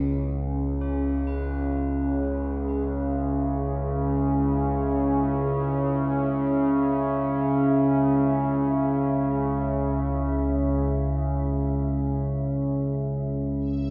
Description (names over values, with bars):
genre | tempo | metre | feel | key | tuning
dark ambient drone | free time | none | none | C# minor | A4 = 440 Hz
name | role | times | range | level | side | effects
dark analog pad | sustained chords | 0.0-13.9 s | C#3 to E5 | -29 LUFS | equal | lush chorus
analog drone | drone | 0.0-13.9 s | C#2 to C#3 | -27 LUFS | equal | chorus
tubular bells | arpeggios | 0.8-13.6 s | C#4 to B4 | -51 LUFS | equal | delay
icy glass pad | texture | 13.6-13.9 s | E5 | -54 LUFS | equal | chorus, built-in reverb
room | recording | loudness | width
wet cathedral reverb, RT60 5.8 s | none | -25 LUFS | mono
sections
0.0-13.9 A section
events
fade-in on tubular bells 0.0-13.9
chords
0.0 C#m